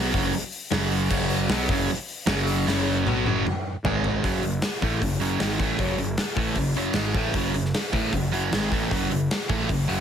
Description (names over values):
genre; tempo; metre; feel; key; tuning
hard rock; 154 BPM; 4/4; straight; F# dorian; A4 = 443 Hz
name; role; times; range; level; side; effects
cranked stack guitar; riff; 0.0-10.0 s; F#2 to B3; -28 LUFS; left 9 dB; overdrive, phaser
overdriven electric guitar; riff; 0.0-10.0 s; F#2 to B3; -27 LUFS; right 10 dB; none
fuzz picked electric bass; bass; 0.0-10.0 s; F#1 to B1; -30 LUFS; equal; overdrive
gated 80s drum kit; drums; 0.1-10.0 s; crash cymbal, hi-hat, kick drum, snare drum, toms; -27 LUFS; left 1 dB; none
room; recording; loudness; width
light reverb; heavily compressed radio sound, multiband compression; -22 LUFS; side -8 dB against mid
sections
0.0-4.2 A section; 4.2-10.0 B section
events
drum fill 2.7-4.2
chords
0.0 F#5; 3.8 G#5; 4.2 F#m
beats
0.34 0.73 | 1.12 1.51 1.90 2.29 | 2.67 3.06 3.45 3.84 | 4.23 4.62 5.01 5.40 | 5.79 6.18 6.57 6.96 | 7.35 7.74 8.13 8.52 | 8.91 9.30 9.69